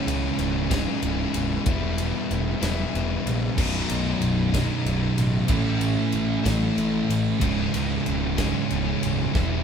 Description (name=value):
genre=quiet-loud alternative rock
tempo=62 BPM (dotted quarters)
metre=6/8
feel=straight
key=unclear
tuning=A4 = 440 Hz
part: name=fuzz guitar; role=riff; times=0.0-9.6 s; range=B1 to A4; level=-30 LUFS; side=right 2 dB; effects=distortion
part: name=sludgy distorted guitar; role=riff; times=0.0-9.6 s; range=B1 to A4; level=-27 LUFS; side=left 4 dB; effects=overdrive
part: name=fuzz picked electric bass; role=bass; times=0.1-9.6 s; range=B0 to C#2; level=-28 LUFS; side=equal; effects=overdrive
part: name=big rock drum kit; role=drums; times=0.1-9.5 s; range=crash cymbal, kick drum, ride cymbal, snare drum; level=-30 LUFS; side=equal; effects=none
part: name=thick fuzz guitar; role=riff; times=3.6-9.6 s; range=B1 to A3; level=-26 LUFS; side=right 4 dB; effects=distortion
room=moderate studio ambience, RT60 0.5 s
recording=band playing live in one room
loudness=-22 LUFS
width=side -7 dB against mid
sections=0.0-9.6 A section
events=drum fill 9.3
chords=0.0 C#m; 1.7 Em; 3.6 B; 5.5 A; 7.4 C#m